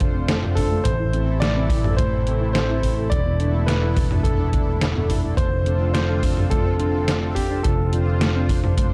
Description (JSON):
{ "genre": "synthwave", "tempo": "106 BPM", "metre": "4/4", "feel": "straight", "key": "A minor", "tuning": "A4 = 438 Hz", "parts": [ { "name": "warm electric grand piano", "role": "melody", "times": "0.0-8.9 s", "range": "G4 to D5", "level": "-30 LUFS", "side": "equal", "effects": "delay" }, { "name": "warm analog pad", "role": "sustained chords", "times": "0.0-8.9 s", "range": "C3 to F4", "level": "-33 LUFS", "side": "equal", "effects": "chorus, sidechain pumping" }, { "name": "soft round pluck", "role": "arpeggios", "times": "0.0-8.9 s", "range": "A3 to A4", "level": "-34 LUFS", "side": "equal", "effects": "ensemble chorus, digital delay" }, { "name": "mellow synth brass", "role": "stabs", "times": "0.0-8.9 s", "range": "C4 to C5", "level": "-33 LUFS", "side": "equal", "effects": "chorus, cassette tape, digital delay" }, { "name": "overdriven picked electric bass", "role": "bass", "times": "0.0-8.9 s", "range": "E1 to A1", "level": "-25 LUFS", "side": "equal", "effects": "none" }, { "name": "detuned 8-bit digital drum machine", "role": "drums", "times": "0.0-8.9 s", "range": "hi-hat, snare drum, toms", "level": "-27 LUFS", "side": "equal", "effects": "none" }, { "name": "kick drum", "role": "drums", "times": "0.0-8.9 s", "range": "none", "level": "-26 LUFS", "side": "equal", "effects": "none" } ], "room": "light reverb, digital ambience", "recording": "dark, warm production", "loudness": "-21 LUFS", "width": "mono", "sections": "0.0-8.9 A section", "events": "none", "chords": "0.0 F6; 0.9 Am; 3.1 E7sus4; 5.4 F6", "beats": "0.29 | 0.85 1.42 1.98 2.55 | 3.12 3.68 4.25 4.82 | 5.38 5.95 6.51 7.08 | 7.64 8.21 8.78" }